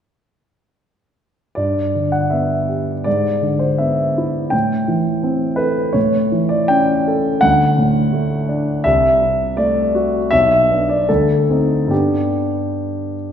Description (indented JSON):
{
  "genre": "classical, romantic character piece for solo piano",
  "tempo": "70-85 BPM",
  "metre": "2/4",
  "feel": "rubato",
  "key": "G major",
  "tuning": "A4 = 440 Hz",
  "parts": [
    { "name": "warm grand piano", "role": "solo", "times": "1.6-13.3 s", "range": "B1 to G5", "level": "-14 LUFS", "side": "equal", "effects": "none" }
  ],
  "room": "wet scoring stage reverb, RT60 1.6 s",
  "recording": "recorded in a church or concert hall",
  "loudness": "-14 LUFS",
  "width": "side -8 dB against mid",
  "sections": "1.6-13.3 A section",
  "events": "none",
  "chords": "1.6 G; 3.1 E7/G#; 4.5 Am7; 6.0 A7; 7.4 D; 8.8 C69; 10.3 Bmadd11; 11.1 D5; 11.9 G",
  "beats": "| 1.57 2.31 | 3.06 3.79 | 4.53 5.25 | 5.96 6.72 | 7.43 8.14 | 8.85 9.58 | 10.32 11.08 | 11.90 12.73"
}